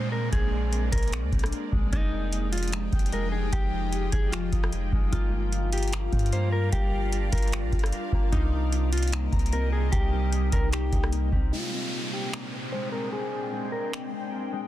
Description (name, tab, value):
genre	hip hop, atmospheric cloud-rap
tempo	150 BPM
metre	4/4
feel	half-time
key	unclear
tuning	A4 = 440 Hz
part	mellow electric guitar	melody	0.0-13.9 s	Eb4 to C5	-34 LUFS	left 1 dB	spring reverb, low-pass filter, tape echo
part	ethereal airy pad	sustained chords	0.0-14.7 s	Bb2 to G5	-33 LUFS	equal	ensemble chorus, built-in reverb, phaser, sidechain pumping, low-pass filter
part	concert harp	arpeggios	0.0-14.7 s	Ab3 to Bb5	-37 LUFS	left 5 dB	low-pass filter, tape echo
part	clean 808-style bass	bass	0.0-11.5 s	F1 to Bb2	-27 LUFS	equal	none
part	downlifter	sound effects	0.0-1.9, 11.5-14.7 s	none	-38 LUFS	equal	none
part	booming analog drum machine	drums	0.3-14.0 s	finger snaps, hi-hat, kick drum, rim click	-27 LUFS	equal	soft clipping on snare
room	digital ambience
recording	dense, heavily limited modern master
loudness	-24 LUFS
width	side -14 dB against mid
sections	0.0-11.5 A section; 11.5-14.7 B section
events	filter sweep 11.5-14.7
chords	0.0 Bb9; 1.9 Fm9; 5.1 Gm7; 8.3 Cm7; 11.5 Bb13